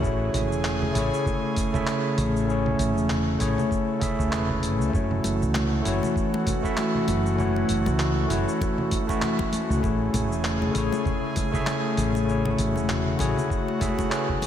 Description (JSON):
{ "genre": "sunset chillout", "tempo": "98 BPM", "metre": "4/4", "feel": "swing 57% on 16ths", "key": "unclear", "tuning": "A4 = 440 Hz", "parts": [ { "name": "overdriven tine electric piano", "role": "accompaniment", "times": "0.0-14.5 s", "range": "A3 to E5", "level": "-27 LUFS", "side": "moving between left 5 dB and right 3 dB", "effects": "auto-pan, ping-pong delay" }, { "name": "airy breathy pad", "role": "sustained chords", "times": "0.0-14.5 s", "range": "C#3 to G#4", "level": "-27 LUFS", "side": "equal", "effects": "chorus" }, { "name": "woody fretless electric bass", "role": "bass", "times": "0.0-13.3 s", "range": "E1 to C#2", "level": "-26 LUFS", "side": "equal", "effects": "none" }, { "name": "dusty soul sampler-style drum kit", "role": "drums", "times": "0.0-14.5 s", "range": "congas, handclaps, hi-hat, shaker", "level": "-32 LUFS", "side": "right 1 dB", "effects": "none" }, { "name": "electronic kick drum", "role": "drums", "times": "0.0-14.4 s", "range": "none", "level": "-29 LUFS", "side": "equal", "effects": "none" }, { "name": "congas", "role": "percussion", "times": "5.2-14.5 s", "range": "none", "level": "-36 LUFS", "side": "left 4 dB", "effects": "none" } ], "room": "wet lush hall reverb, RT60 2.0 s", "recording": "dreamy mix soaked in reverb", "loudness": "-22 LUFS", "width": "side -10 dB against mid", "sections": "0.0-14.5 A section", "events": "none", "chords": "0.0 Amaj7; 4.9 F#m7; 9.8 Amaj7" }